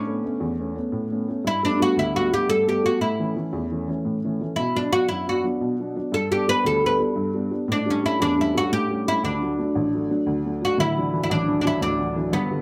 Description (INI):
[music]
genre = celtic folk, Celtic slip jig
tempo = 116 BPM (dotted quarters)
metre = 9/8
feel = straight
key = D major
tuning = A4 = 440 Hz
[part]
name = oud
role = melody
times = 0.0-12.6 s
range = B3 to B4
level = -25 LUFS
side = equal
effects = none
[part]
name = dark upright piano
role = accompaniment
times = 0.0-12.6 s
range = D1 to D4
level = -27 LUFS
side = equal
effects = none
[sound]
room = light reverb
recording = close, detailed microphones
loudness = -23 LUFS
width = mono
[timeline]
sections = 0.0-10.8 A section; 10.8-12.6 B section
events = none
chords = 0.0 Aadd9; 1.4 Gadd9; 3.0 A; 4.6 Bm; 6.1 G; 7.7 A7; 9.2 D; 10.8 Dadd9